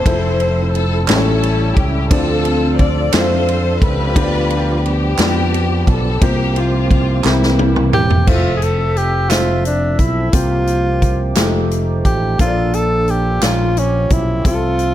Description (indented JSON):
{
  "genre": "slow gospel",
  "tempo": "58 BPM (dotted quarters)",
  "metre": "6/8",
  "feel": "straight",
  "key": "F major",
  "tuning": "A4 = 440 Hz",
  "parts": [
    { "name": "warm studio string section", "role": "melody", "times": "0.0-8.2 s", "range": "G3 to D5", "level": "-20 LUFS", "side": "left 2 dB", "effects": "none" },
    { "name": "warm baby grand piano", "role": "accompaniment", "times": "0.0-14.9 s", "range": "A2 to F5", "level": "-22 LUFS", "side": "left 2 dB", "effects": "none" },
    { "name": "percussive tonewheel organ", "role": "sustained chords", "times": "0.0-14.9 s", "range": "E3 to E5", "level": "-24 LUFS", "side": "right 4 dB", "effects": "slow rotary speaker, overdrive" },
    { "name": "fingered electric bass", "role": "bass", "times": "0.0-14.9 s", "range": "E1 to F2", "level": "-18 LUFS", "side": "equal", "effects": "none" },
    { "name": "swinging big-band drum kit", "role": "drums", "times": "0.1-14.9 s", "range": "crash cymbal, hi-hat, kick drum, ride cymbal, snare drum, toms", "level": "-18 LUFS", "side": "equal", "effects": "none" },
    { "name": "group handclap", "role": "percussion", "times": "1.1-13.7 s", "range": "none", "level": "-25 LUFS", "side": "right 11 dB", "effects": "none" },
    { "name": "warm tenor saxophone", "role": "melody", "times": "7.9-14.9 s", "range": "Db4 to A4", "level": "-19 LUFS", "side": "equal", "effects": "none" }
  ],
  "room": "light reverb, small room reverb",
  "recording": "none",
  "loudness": "-13 LUFS",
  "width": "side -12 dB against mid",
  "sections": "0.0-8.3 A section; 8.3-14.9 B section",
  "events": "drum fill 7.2-8.3",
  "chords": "0.1 Fmaj7; 1.1 A7; 2.1 Dm7; 4.2 G7/D; 6.2 C7sus4; 7.2 C7; 8.3 Fmaj7; 10.3 C7sus4; 11.4 F9; 12.4 Bbmaj7; 13.4 Bbm6"
}